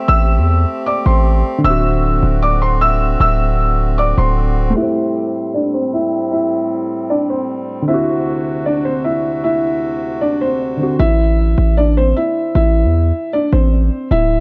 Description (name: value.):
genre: hip hop.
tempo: 154 BPM.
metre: 4/4.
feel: half-time.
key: A dorian.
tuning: A4 = 441 Hz.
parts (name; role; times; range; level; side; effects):
felt-muted upright piano; melody; 0.0-14.4 s; C4 to E6; -19 LUFS; equal; low-pass filter, tape echo.
dark concert grand piano; accompaniment; 0.0-11.0 s; D3 to C5; -26 LUFS; equal; low-pass filter.
hand-pumped harmonium; sustained chords; 0.0-11.0 s; D2 to G4; -27 LUFS; equal; low-pass filter.
distorted 808-style bass; bass; 0.1-4.7, 11.0-14.4 s; D1 to E2; -16 LUFS; equal; distortion.
room: light reverb, studio reverb.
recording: dark, warm production.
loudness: -16 LUFS.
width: mono.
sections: 0.0-4.8 A section; 4.8-11.0 B section; 11.0-14.4 C section.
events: filter sweep 4.8-11.0.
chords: 0.0 Am7; 1.6 D7; 4.8 Am7; 7.9 D7; 11.0 Am.